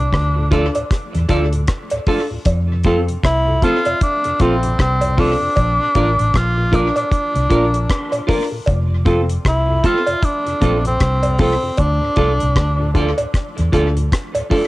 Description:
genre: roots reggae.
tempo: 77 BPM.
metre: 4/4.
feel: swing 60% on 16ths.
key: F major.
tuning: A4 = 436 Hz.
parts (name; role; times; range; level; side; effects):
breathy tenor saxophone; melody; 0.0-13.0 s; C4 to F4; -20 LUFS; equal; cassette tape, dub echo.
mellow tonewheel organ; accompaniment; 0.0-14.6 s; D2 to D4; -30 LUFS; left 1 dB; none.
vintage muted fingered electric bass; bass; 0.0-14.1 s; F1 to F2; -18 LUFS; equal; transformer saturation.
deep reggae drum kit; drums; 0.1-14.7 s; hi-hat, kick drum, rim click; -19 LUFS; equal; cassette tape.
dark upright piano; stabs; 0.4-14.7 s; C4 to Bb4; -24 LUFS; left 2 dB; cassette tape.
clean electric guitar; accompaniment; 0.5-14.7 s; C4 to D5; -23 LUFS; right 3 dB; cassette tape, dub echo.
cowbell; percussion; 0.8-14.5 s; none; -23 LUFS; right 1 dB; none.
room: light reverb, studio reverb.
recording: home recording on cassette.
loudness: -14 LUFS.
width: side -19 dB against mid.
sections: 0.0-14.7 A section.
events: none.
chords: 0.0 Dm; 2.5 F; 5.6 Bb; 8.7 F; 11.8 Dm.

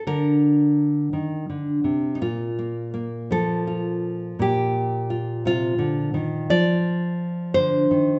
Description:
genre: folk, solo fingerstyle acoustic guitar.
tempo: 56 BPM (dotted quarters).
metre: 6/8.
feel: rubato.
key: Bb major.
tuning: A4 = 440 Hz.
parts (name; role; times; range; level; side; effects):
nylon-string guitar; solo; 0.0-8.2 s; Bb2 to D5; -23 LUFS; equal; none.
room: wet large studio reverb, RT60 1.3 s.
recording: band playing live in one room, nothing above 8.0 kHz.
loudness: -23 LUFS.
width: mono.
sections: 0.0-2.2 A section; 2.2-8.2 B section.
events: none.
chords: 0.0 Bb/D; 2.2 Bb5; 6.5 F5.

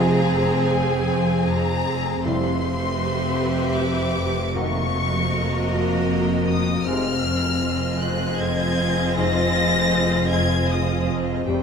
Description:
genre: cinematic.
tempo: 78 BPM.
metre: 3/4.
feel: straight.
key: unclear.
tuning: A4 = 439 Hz.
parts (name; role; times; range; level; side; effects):
rich chamber violin section; melody; 0.0-11.1 s; Ab5 to Bb6; -27 LUFS; left 3 dB; none.
rich chamber violin section; second line; 0.0-11.6 s; Ab4 to Ab5; -30 LUFS; left 3 dB; none.
rich chamber viola section; accompaniment; 0.0-11.6 s; Bb3 to Ab4; -26 LUFS; right 2 dB; none.
clear trombone section; sustained chords; 0.0-11.6 s; C3 to Gb4; -31 LUFS; right 3 dB; none.
icy glass pad; sustained chords; 0.0-11.6 s; C4 to F5; -34 LUFS; right 1 dB; chorus, built-in reverb.
mellow French horn section; sustained chords; 0.0-11.6 s; Bb3 to G4; -31 LUFS; left 4 dB; none.
concert harp; riff; 0.0-11.6 s; F2; -27 LUFS; left 7 dB; none.
rich chamber double bass section; bass; 0.0-11.6 s; F1; -28 LUFS; right 3 dB; none.
rich studio cello section; bass; 0.0-11.6 s; F2; -27 LUFS; right 3 dB; none.
bowed-like drone; drone; 0.0-11.6 s; F2; -31 LUFS; equal; none.
timpani; percussion; 2.3-5.7, 11.5-11.6 s; F2; -39 LUFS; right 1 dB; none.
room: moderate scoring stage reverb, RT60 1.8 s.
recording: none.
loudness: -19 LUFS.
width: side -6 dB against mid.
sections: 0.0-11.6 A section.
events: none.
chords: 0.0 Fm; 2.2 Cmaj7/F; 4.6 Ebm7/F; 6.9 Fm7.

